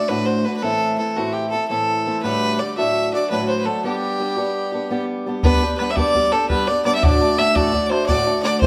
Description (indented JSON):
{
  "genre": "celtic folk, Celtic slip jig",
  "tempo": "112 BPM (dotted quarters)",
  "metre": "9/8",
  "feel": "straight",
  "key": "G major",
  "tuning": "A4 = 440 Hz",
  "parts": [
    { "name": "rich fiddle", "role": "melody", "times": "0.0-8.7 s", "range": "F#4 to E5", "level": "-23 LUFS", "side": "equal", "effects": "none" },
    { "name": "picked swing-style acoustic guitar", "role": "accompaniment", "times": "0.0-8.7 s", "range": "D2 to G4", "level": "-24 LUFS", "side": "equal", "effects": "none" },
    { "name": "bodhran", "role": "percussion", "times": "5.4-8.7 s", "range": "none", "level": "-23 LUFS", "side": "equal", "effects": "none" }
  ],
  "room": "moderate stone room reverb, RT60 1.1 s",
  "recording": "band playing live in one room",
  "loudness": "-20 LUFS",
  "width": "mono",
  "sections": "0.0-5.4 A section; 5.4-8.7 B section",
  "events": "none",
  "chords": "0.0 D; 0.6 Am; 2.2 Dsus4; 2.8 D; 3.8 G; 7.0 D"
}